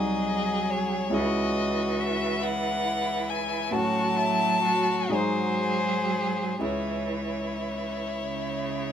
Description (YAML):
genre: classical, slow romantic movement for piano quartet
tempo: 37-48 BPM (dotted quarters)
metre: 12/8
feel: rubato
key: C# minor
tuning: A4 = 440 Hz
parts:
  - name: rich violin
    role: melody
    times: 0.0-8.9 s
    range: B#4 to A5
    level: -29 LUFS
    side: left 3 dB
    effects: none
  - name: rich cello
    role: second line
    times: 0.0-8.9 s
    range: C#3 to F#3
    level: -32 LUFS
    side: right 8 dB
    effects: none
  - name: rich violin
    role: second line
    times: 0.0-8.9 s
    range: E4 to G#4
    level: -32 LUFS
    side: left 2 dB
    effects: none
  - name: warm concert grand piano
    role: accompaniment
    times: 0.0-8.9 s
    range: B#1 to G#4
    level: -30 LUFS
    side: equal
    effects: none
room: moderate studio reverb, RT60 0.5 s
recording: minimal, uncompressed stereo recording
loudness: -24 LUFS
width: side -9 dB against mid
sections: 0.0-8.9 A section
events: none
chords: 0.0 G#7/B#; 1.1 C#m; 3.7 F#m/A; 5.1 G#7; 6.6 C#m